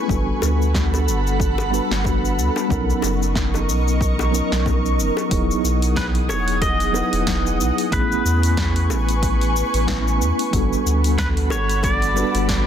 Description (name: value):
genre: sunset chillout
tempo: 92 BPM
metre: 4/4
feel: swing 57% on 16ths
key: E major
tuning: A4 = 440 Hz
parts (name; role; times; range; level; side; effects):
- mellow tine electric piano; accompaniment; 0.0-12.7 s; F#3 to B4; -24 LUFS; left 1 dB; medium stereo tremolo, auto-pan, ping-pong delay
- ethereal airy pad; sustained chords; 0.0-12.7 s; G#4 to D#6; -26 LUFS; right 1 dB; ensemble chorus, built-in reverb
- warm sub bass; bass; 0.1-12.7 s; E1 to E2; -21 LUFS; equal; none
- deep house drum kit; drums; 0.1-12.6 s; cabasa, hi-hat, snare drum; -28 LUFS; left 2 dB; none
- electronic kick drum; drums; 0.1-12.6 s; none; -24 LUFS; equal; overdrive
- bongos; percussion; 0.4-12.3 s; none; -30 LUFS; left 5 dB; none
- pedal steel guitar; melody; 6.0-12.7 s; B4 to D#5; -24 LUFS; equal; ping-pong delay
room: light reverb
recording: dense, heavily limited modern master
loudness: -17 LUFS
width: side -9 dB against mid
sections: 0.0-5.3 A section; 5.3-12.7 B section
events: none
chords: 0.1 Gmaj9; 2.7 Bmaj9; 5.3 Emaj9; 7.9 Amaj9; 10.5 Gmaj9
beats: | 0.10 0.75 1.40 2.05 | 2.70 3.36 4.01 4.66 | 5.31 5.96 6.62 7.27 | 7.92 8.57 9.23 9.88 | 10.53 11.18 11.83 12.49